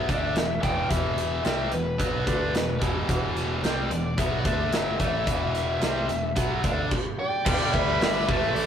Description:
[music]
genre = hard rock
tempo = 110 BPM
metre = 4/4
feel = straight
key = E minor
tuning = A4 = 440 Hz
[part]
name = bluesy overdriven lead guitar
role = melody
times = 0.0-8.7 s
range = B4 to G5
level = -30 LUFS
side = left 3 dB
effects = distortion
[part]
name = heavy high-gain guitar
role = riff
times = 0.0-8.7 s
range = E2 to D4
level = -28 LUFS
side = equal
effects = distortion
[part]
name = fingered electric bass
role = bass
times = 0.0-8.7 s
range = E1 to D2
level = -32 LUFS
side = equal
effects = none
[part]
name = big rock drum kit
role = drums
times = 0.1-8.7 s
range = crash cymbal, hi-hat, kick drum, snare drum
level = -27 LUFS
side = right 1 dB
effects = none
[part]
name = smooth overdriven lead guitar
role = second line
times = 7.2-8.7 s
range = A4 to D5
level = -29 LUFS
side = right 4 dB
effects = none
[part]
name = distorted electric guitar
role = riff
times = 7.5-8.7 s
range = G2 to A3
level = -34 LUFS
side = equal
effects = none
[sound]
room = moderate studio reverb, RT60 0.6 s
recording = rough rehearsal-room recording, warm saturation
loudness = -23 LUFS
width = side -8 dB against mid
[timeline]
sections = 0.0-7.5 A section; 7.5-8.7 B section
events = none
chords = 0.0 E5; 7.5 G

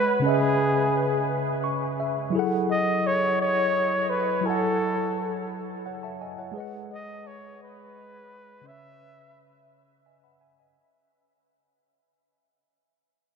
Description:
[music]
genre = R&B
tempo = 57 BPM (dotted quarters)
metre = 6/8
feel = straight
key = F# dorian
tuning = A4 = 441 Hz
[part]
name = breathy flugelhorn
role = melody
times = 0.0-9.7 s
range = G#4 to E5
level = -26 LUFS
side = equal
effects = analog delay
[part]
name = mellow tine electric piano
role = accompaniment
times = 0.0-10.9 s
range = C#3 to C#6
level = -27 LUFS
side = equal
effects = medium stereo tremolo
[sound]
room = wet huge ambient reverb, RT60 9.1 s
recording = dreamy mix soaked in reverb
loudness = -22 LUFS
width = side -6 dB against mid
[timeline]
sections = 0.0-10.8 A section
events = fade-out 0.0-10.8; tine electric piano fill 1.3-2.3, 9.7-10.8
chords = 0.2 C#m9; 2.3 F#m9; 6.5 G#m7; 8.7 C#m7

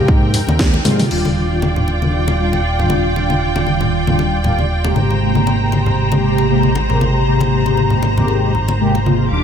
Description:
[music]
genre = nu-disco, nu disco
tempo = 117 BPM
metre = 4/4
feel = swing 55% on 16ths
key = unclear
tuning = A4 = 440 Hz
[part]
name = mellow synth brass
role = accompaniment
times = 0.0-9.4 s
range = C3 to G4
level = -18 LUFS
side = equal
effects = chorus, phaser, cassette tape, sidechain pumping, ping-pong delay
[part]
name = rich symphonic string section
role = sustained chords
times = 0.0-9.4 s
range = Ab3 to D6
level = -20 LUFS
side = equal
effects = sidechain pumping
[part]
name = fat analog bass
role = bass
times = 0.1-9.4 s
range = Eb1 to Ab2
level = -19 LUFS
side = right 1 dB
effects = none
[part]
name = electronic kick drum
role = drums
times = 0.1-0.7 s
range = none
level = -14 LUFS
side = equal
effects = none
[part]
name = congas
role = percussion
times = 0.1-9.2 s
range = none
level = -21 LUFS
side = left 2 dB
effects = none
[part]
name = house drum kit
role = drums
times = 0.3-1.2 s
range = crash cymbal, hi-hat, snare drum, toms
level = -21 LUFS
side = left 1 dB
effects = none
[sound]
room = light reverb, digital ambience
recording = none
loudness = -13 LUFS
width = side -8 dB against mid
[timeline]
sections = 0.0-1.1 A section; 1.1-9.4 B section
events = band accent 0.6; drum fill 0.9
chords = 0.0 Abmaj9; 1.1 Ebmaj9; 5.0 Abmaj9

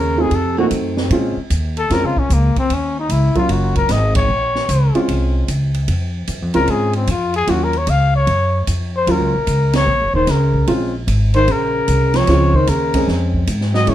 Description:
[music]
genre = jazz, small-group swing and bop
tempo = 150 BPM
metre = 4/4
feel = swing 65% on 8ths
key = Bb minor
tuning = A4 = 440 Hz
[part]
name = breathy trumpet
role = melody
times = 0.0-13.9 s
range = Bb3 to F5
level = -18 LUFS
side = left 3 dB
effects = plate reverb
[part]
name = breathy baritone saxophone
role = second line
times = 0.0-0.7, 10.2-13.9 s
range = Bb2 to Gb3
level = -21 LUFS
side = right 5 dB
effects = none
[part]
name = upright bass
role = bass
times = 0.0-13.9 s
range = Eb1 to Bb2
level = -17 LUFS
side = equal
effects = none
[part]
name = warm upright piano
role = accompaniment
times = 0.2-13.9 s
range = Gb3 to Ab4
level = -19 LUFS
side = right 1 dB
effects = none
[part]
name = open jazz drum kit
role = drums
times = 0.3-13.9 s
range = hi-hat, kick drum, ride cymbal, snare drum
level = -25 LUFS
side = right 1 dB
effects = none
[sound]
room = light reverb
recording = dark, warm production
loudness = -14 LUFS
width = side -12 dB against mid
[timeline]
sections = 0.0-1.1 A section; 1.1-13.9 A section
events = band accent 4.1, 9.7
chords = 0.3 F7b9; 1.1 Bbm7; 2.7 Ebm7; 4.3 Bbm7; 7.5 Ebm7; 10.7 Bbm7

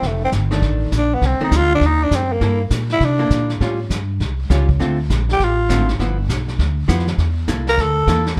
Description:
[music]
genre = jazz, small-group swing and bop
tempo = 201 BPM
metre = 4/4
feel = swing 63% on 8ths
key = C mixolydian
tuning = A4 = 440 Hz
[part]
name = growling tenor saxophone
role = melody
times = 0.0-8.3 s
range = A3 to Bb4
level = -21 LUFS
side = equal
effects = none
[part]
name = upright bass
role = bass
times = 0.0-8.4 s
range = F1 to C3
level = -21 LUFS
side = equal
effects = none
[part]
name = vintage brush drum kit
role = drums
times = 0.0-8.4 s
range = brushed snare drum, hi-hat, kick drum, snare drum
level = -27 LUFS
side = equal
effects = none
[part]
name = archtop guitar, miked and amplified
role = accompaniment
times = 0.5-8.4 s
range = D3 to A4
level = -26 LUFS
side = equal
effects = none
[sound]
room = light reverb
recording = dark, warm production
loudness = -18 LUFS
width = mono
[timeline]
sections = 0.0-8.4 A section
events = tenor saxophone solo 0.0-8.4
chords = 0.0 F13; 1.2 F#dim7(no3); 2.4 C13; 3.6 A7alt; 4.8 Dm7; 6.0 G6; 7.2 C13

